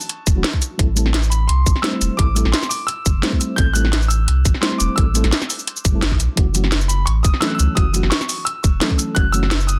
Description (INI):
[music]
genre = liquid drum and bass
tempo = 172 BPM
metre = 4/4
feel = straight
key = unclear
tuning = A4 = 440 Hz
[part]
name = bright grand piano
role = melody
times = 0.0-9.8 s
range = A5 to G6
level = -28 LUFS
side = equal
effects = delay
[part]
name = drum and bass drum kit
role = drums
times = 0.0-9.8 s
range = hi-hat, shaker, snare drum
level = -23 LUFS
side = equal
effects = none
[part]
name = mellow FM electric piano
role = accompaniment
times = 0.3-9.5 s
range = E3 to C5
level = -27 LUFS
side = equal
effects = chorus, digital delay
[part]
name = saturated sub bass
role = bass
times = 0.3-9.8 s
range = E1 to C#2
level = -20 LUFS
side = equal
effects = none
[part]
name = electronic kick drum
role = drums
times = 0.3-9.2 s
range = none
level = -19 LUFS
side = equal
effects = none
[sound]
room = digital ambience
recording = dense, heavily limited modern master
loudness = -18 LUFS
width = mono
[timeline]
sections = 0.0-9.8 A section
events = none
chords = 0.0 F#m7; 0.6 Am7; 6.4 F#m7